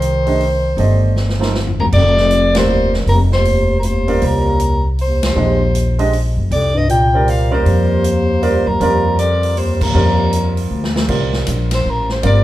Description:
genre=modal jazz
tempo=157 BPM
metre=3/4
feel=swing 64% on 8ths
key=unclear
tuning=A4 = 444 Hz
part: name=warm soprano saxophone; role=melody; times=0.0-12.4 s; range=Bb4 to G5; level=-18 LUFS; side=equal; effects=none
part: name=mellow bass clarinet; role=second line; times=0.0-10.7 s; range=D2 to Eb3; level=-20 LUFS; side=left 1 dB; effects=none
part: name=upright bass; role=bass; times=0.0-12.4 s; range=F1 to Gb2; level=-16 LUFS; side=equal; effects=none
part: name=swinging big-band drum kit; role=drums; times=0.0-12.4 s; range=crash cymbal, hi-hat, kick drum, ride cymbal, snare drum, toms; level=-24 LUFS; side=equal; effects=none
part: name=warm concert grand piano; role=accompaniment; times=0.3-12.4 s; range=F3 to Eb5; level=-21 LUFS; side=right 4 dB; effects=none
room=moderate large studio reverb, RT60 1.2 s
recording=band playing live in one room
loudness=-13 LUFS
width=side -15 dB against mid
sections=0.0-1.9 A section; 1.9-11.1 B section; 11.1-12.4 C section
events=drum fill 1.2-1.9, 10.7-11.1; band accent 2.5, 5.2, 9.8; soprano saxophone solo 11.1-12.4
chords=0.0 Cmadd9; 1.9 F9sus4; 11.1 C9sus4

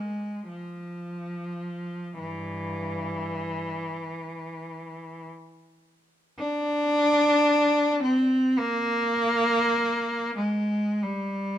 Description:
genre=classical, free, expressive piece for unaccompanied cello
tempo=free time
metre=none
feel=none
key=unclear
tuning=A4 = 440 Hz
part: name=rich cello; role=solo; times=0.0-11.6 s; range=G2 to D4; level=-24 LUFS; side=equal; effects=none
room=moderate recital hall reverb, RT60 1.5 s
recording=close, detailed microphones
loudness=-23 LUFS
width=side -11 dB against mid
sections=0.0-11.6 A section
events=none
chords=none

